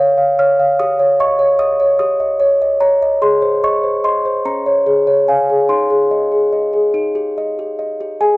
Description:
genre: classical, lullaby for music box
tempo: 49 BPM (dotted quarters)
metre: 6/8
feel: straight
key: unclear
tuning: A4 = 441 Hz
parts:
  - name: music box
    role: solo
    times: 0.0-8.4 s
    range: Db4 to G6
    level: -12 LUFS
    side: equal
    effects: none
room: light reverb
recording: dry, close 1970s-style studio recording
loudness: -12 LUFS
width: side -22 dB against mid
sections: 0.0-8.2 A section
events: none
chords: 0.0 Bbm; 0.8 Eb7/G; 3.2 Ab; 4.4 Db; 5.7 Ab/Eb; 6.9 Eb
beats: | 0.80 2.00 | 3.22 4.45 | 5.69 6.95 | 8.20

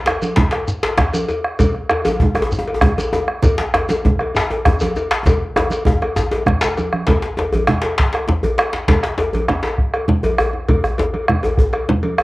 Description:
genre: west african traditional, West African drum ensemble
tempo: 132 BPM (dotted quarters)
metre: 12/8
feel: straight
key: none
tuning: none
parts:
  - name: bombo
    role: percussion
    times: 0.1-12.2 s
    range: none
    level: -18 LUFS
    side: equal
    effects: none
  - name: cowbell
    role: percussion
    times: 0.1-12.2 s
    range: none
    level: -23 LUFS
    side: left 2 dB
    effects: none
  - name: djembe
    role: percussion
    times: 0.1-12.0 s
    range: none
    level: -23 LUFS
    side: left 1 dB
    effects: none
  - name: djembe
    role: percussion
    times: 0.1-12.2 s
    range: none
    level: -21 LUFS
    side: left 1 dB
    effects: none
  - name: congas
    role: percussion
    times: 0.2-12.2 s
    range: none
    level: -21 LUFS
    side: right 2 dB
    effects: none
  - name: shekere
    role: percussion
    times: 0.2-6.9 s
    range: none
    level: -27 LUFS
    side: equal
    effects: none
room: light reverb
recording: home recording on cassette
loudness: -15 LUFS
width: side -19 dB against mid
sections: 0.0-7.1 A section; 7.1-12.2 B section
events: drum fill 5.3-7.1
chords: none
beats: 0.21 0.68 1.14 | 1.59 2.05 2.51 2.97 | 3.43 3.88 4.34 4.80 | 5.25 5.71 6.16 6.62 | 7.07 7.53 7.98 8.43 | 8.88 9.34 9.79 10.24 | 10.69 11.14 11.59 12.04

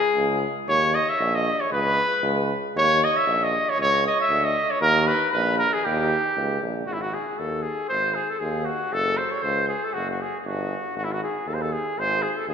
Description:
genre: balkan folk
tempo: 117 BPM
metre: 2/4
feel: swing 55% on 16ths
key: Eb phrygian dominant, G# phrygian dominant from 6.9 s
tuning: A4 = 440 Hz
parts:
  - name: warm trumpet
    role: melody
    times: 0.0-12.5 s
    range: E4 to Fb5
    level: -22 LUFS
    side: equal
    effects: none
  - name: clear tuba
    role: bass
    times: 0.2-12.5 s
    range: F#1 to D#2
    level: -27 LUFS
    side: equal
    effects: none
room: wet concert hall reverb, RT60 2.3 s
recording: recorded in a church or concert hall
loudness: -21 LUFS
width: side -7 dB against mid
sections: 0.0-6.9 A section; 6.9-12.5 B section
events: speeding up 0.0-12.5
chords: 0.0 Db5; 0.7 Eb5; 1.7 Bsus2/C#; 2.8 Eb5; 3.8 Dbmadd9; 4.8 Eb5; 5.8 Eb; 6.9 G#5; 8.9 F#5; 11.0 G#5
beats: 0.16 | 0.68 1.20 | 1.72 2.23 | 2.75 3.27 | 3.78 4.30 | 4.81 5.33 | 5.84 6.36 | 6.87 7.39 | 7.90 8.42 | 8.93 9.44 | 9.95 10.46 | 10.97 11.48 | 11.98 12.48

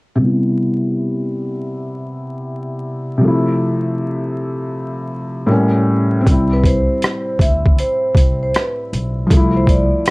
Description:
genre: lo-fi hip hop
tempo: 79 BPM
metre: 4/4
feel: swing 65% on 16ths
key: C major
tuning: A4 = 440 Hz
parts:
  - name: felt-muted upright piano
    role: accompaniment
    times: 0.1-10.1 s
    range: A2 to E4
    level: -17 LUFS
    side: left 1 dB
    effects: cassette tape, low-pass filter
  - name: upright bass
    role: bass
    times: 6.3-9.9 s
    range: B1 to D2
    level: -19 LUFS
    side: equal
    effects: none
  - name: boom bap sampler-style drum kit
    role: drums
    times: 6.3-10.1 s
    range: hi-hat, kick drum, rim click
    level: -14 LUFS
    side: equal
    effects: none
  - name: vibraphone with soft mallets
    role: melody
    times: 6.5-10.1 s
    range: B4 to E5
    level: -20 LUFS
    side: right 1 dB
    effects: none
room: moderate studio ambience, RT60 0.5 s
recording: vinyl crackle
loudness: -14 LUFS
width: side -25 dB against mid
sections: 0.2-6.3 A section; 6.3-10.1 B section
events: filter sweep on felt piano 0.2-6.3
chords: 0.2 Cmaj7; 3.2 Fmaj7/C; 5.5 A7b9; 6.3 C; 9.3 Fmaj7/C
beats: | 0.19 0.95 1.71 2.47 | 3.23 3.99 4.75 5.50 | 6.26 7.02 7.78 8.54 | 9.30 10.06

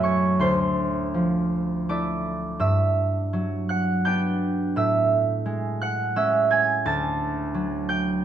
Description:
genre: classical, solo harp piece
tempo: 84 BPM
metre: 3/4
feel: uneven beats, rubato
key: unclear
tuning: A4 = 440 Hz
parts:
  - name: concert harp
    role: solo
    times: 0.0-8.2 s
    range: D2 to A6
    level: -21 LUFS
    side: right 2 dB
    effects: none
room: moderate large studio reverb, RT60 1.3 s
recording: dark, warm production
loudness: -21 LUFS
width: side -10 dB against mid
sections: 0.0-8.2 A section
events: none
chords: 0.4 Dm9; 2.6 Gmaj7; 4.8 Amaj7; 6.8 Dmaj7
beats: | 0.40 1.13 1.87 | 2.59 3.33 4.05 | 4.76 5.46 6.15 | 6.84 7.54 8.24

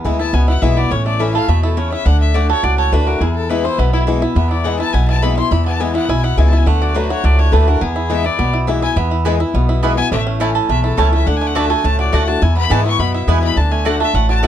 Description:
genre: bluegrass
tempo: 209 BPM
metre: 4/4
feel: straight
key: E mixolydian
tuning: A4 = 440 Hz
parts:
  - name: bluegrass banjo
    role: melody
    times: 0.0-14.5 s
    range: E3 to A4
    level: -21 LUFS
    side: right 7 dB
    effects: none
  - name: picked swing-style acoustic guitar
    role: accompaniment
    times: 0.0-14.5 s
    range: E2 to F#4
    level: -20 LUFS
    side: left 5 dB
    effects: none
  - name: upright bass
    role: bass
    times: 0.0-14.5 s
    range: A1 to G#2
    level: -15 LUFS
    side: equal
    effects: none
  - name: bright fiddle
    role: second line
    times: 0.2-14.4 s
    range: E4 to C#6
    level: -22 LUFS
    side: left 7 dB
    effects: none
  - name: mandolin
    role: stabs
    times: 9.2-14.5 s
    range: A3 to A5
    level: -21 LUFS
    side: right 5 dB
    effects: none
room: little or no reverb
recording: dark, warm production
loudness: -13 LUFS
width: side -10 dB against mid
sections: 0.0-14.5 A section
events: fiddle solo 0.0-14.5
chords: 0.0 E; 0.9 A; 2.1 D; 3.2 E; 6.7 D; 7.8 E; 10.1 A; 11.3 D; 12.4 E; 13.6 D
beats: 0.05 0.34 0.62 | 0.91 1.20 1.49 1.77 | 2.06 2.35 2.64 2.92 | 3.21 3.50 3.79 4.08 | 4.36 4.65 4.94 5.23 | 5.51 5.80 6.09 6.38 | 6.67 6.95 7.24 7.53 | 7.82 8.10 8.39 8.68 | 8.97 9.26 9.54 9.83 | 10.12 10.41 10.69 10.98 | 11.27 11.56 11.84 12.13 | 12.42 12.71 12.99 13.28 | 13.57 13.86 14.14 14.43

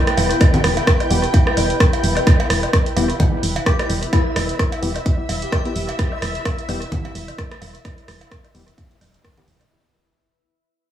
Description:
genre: minimal techno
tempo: 129 BPM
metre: 4/4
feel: swing 56% on 16ths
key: E minor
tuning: A4 = 438 Hz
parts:
  - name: granular cloud pad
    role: texture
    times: 0.0-9.7 s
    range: E4 to G5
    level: -24 LUFS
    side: equal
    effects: built-in reverb, sidechain pumping
  - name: punchy analog drum machine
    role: drums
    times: 0.1-9.7 s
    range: hi-hat, rim click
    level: -24 LUFS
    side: right 1 dB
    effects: analog delay
  - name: electronic rim click, cowbell, woodblock and congas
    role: percussion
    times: 0.1-9.7 s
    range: none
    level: -24 LUFS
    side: right 1 dB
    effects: analog delay
  - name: woody FM bass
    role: bass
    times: 0.2-9.6 s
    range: E1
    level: -22 LUFS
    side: equal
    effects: sidechain pumping
  - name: electronic kick drum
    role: drums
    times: 0.4-9.3 s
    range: none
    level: -16 LUFS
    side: equal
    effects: none
  - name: percussive organ stab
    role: stabs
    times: 1.1-9.5 s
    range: B3 to G4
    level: -27 LUFS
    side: left 3 dB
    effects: chorus, analog delay
  - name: airy dreamy lead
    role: melody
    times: 3.7-6.1 s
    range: E4 to G4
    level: -29 LUFS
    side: left 2 dB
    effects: chorus, analog delay
room: light reverb, digital ambience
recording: echo-heavy mix, small room ambience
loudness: -16 LUFS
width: side -11 dB against mid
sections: 0.0-9.7 A section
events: drop 0.0-9.7; fade-out 2.3-9.7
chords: 0.0 Em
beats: | 0.41 0.87 1.34 1.80 | 2.27 2.73 3.20 3.66 | 4.13 4.59 5.06 5.52 | 5.99 6.45 6.92 7.38 | 7.85 8.31 8.78 9.24

